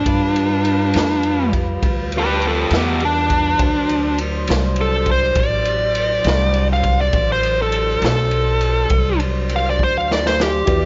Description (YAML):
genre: slow blues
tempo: 68 BPM (dotted quarters)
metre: 12/8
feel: straight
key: D mixolydian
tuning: A4 = 440 Hz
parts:
  - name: dark smooth lead guitar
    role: melody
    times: 0.0-10.9 s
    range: B3 to F5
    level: -20 LUFS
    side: equal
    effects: overdrive
  - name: tonewheel organ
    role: sustained chords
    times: 0.0-10.9 s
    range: F#3 to D5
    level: -29 LUFS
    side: equal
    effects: overdrive, slow rotary speaker
  - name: upright bass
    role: bass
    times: 0.0-10.9 s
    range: A1 to G2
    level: -23 LUFS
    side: equal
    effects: tube saturation
  - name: raw garage drum kit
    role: drums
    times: 0.1-10.8 s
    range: kick drum, ride cymbal, snare drum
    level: -25 LUFS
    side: equal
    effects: none
  - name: dark upright piano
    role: accompaniment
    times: 10.7-10.9 s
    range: F#4 to D5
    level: -22 LUFS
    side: equal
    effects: none
room: light reverb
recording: worn, warbling old tape, cassette tape, warbly pitch drift, nothing above 7.6 kHz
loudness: -18 LUFS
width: mono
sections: 0.0-10.9 A section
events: lead electric guitar solo 0.0-10.9; drum fill 9.8-10.7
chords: 0.1 G7; 3.6 D7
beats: | 0.06 0.94 1.83 2.71 | 3.60 4.48 5.37 6.25 | 7.14 8.02 8.91 9.79 | 10.68